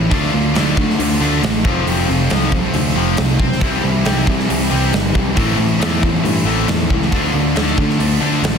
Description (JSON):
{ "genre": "hard rock", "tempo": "137 BPM", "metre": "4/4", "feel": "straight", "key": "unclear", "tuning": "A4 = 440 Hz", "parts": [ { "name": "high-gain distorted guitar", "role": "riff", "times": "0.0-8.6 s", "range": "A2 to F4", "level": "-20 LUFS", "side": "equal", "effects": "distortion" }, { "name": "sludgy distorted guitar", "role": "riff", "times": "0.0-8.6 s", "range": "F2 to D4", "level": "-22 LUFS", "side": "right 9 dB", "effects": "overdrive" }, { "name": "tight distorted guitar", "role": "riff", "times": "0.0-8.6 s", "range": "F2 to D4", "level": "-21 LUFS", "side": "left 12 dB", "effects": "distortion" }, { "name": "picked electric bass", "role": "bass", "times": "0.0-8.6 s", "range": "F1 to D3", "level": "-20 LUFS", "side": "equal", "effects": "none" }, { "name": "big rock drum kit", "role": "drums", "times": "0.1-8.5 s", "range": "hi-hat, kick drum, snare drum", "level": "-19 LUFS", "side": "equal", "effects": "soft clipping on kick, soft clipping on snare" } ], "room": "small room ambience", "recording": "dense, heavily limited modern master", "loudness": "-14 LUFS", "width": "side -6 dB against mid", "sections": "0.0-8.6 A section", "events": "none", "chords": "0.1 Dm; 1.6 F; 3.6 C; 5.4 Am; 7.1 Dm" }